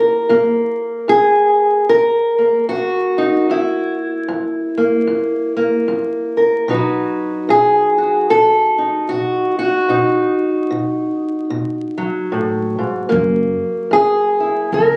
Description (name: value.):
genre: acoustic country blues, solo or duo.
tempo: 75 BPM.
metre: 4/4.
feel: swing 60% on 8ths.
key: F# mixolydian.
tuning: A4 = 440 Hz.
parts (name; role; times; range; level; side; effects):
fingerpicked steel-string acoustic guitar; melody; 0.0-15.0 s; F#2 to B4; -16 LUFS; equal; none.
upright bass; bass; 13.1-15.0 s; F#1 to C#2; -22 LUFS; equal; none.
room: light reverb.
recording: recorded on a phone in the room, club reverb, vinyl crackle.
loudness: -16 LUFS.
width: mono.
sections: 0.0-15.0 A section.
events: none.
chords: 0.0 F#7; 6.7 B; 13.1 F#7.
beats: | 0.29 1.09 1.89 2.69 | 3.49 4.29 5.09 5.89 | 6.69 7.49 8.29 9.09 | 9.90 10.70 11.50 12.31 | 13.11 13.91 14.72.